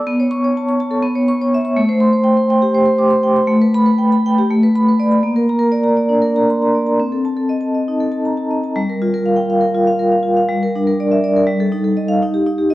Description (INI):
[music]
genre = classical, contemporary piece for solo vibraphone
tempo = 244 BPM (eighths)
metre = 7/8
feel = straight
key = unclear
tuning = A4 = 440 Hz
[part]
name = vibraphone with medium hard mallets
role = solo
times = 0.0-12.7 s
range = G3 to D6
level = -13 LUFS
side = equal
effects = none
[sound]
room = wet recital hall reverb, RT60 1.4 s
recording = worn, warbling old tape, cassette tape, warbly pitch drift, nothing above 10.8 kHz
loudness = -13 LUFS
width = side -16 dB against mid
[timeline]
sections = 0.0-8.8 A section; 8.8-12.7 B section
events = none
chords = 0.1 Aadd9/B; 1.0 C#m7/B; 1.8 Am7; 3.5 Gadd9/A; 4.5 Bm7/A; 5.2 Bbadd9; 7.0 Cm6; 8.8 Gm7; 10.5 Bb/G; 11.5 F9/G; 12.2 Eb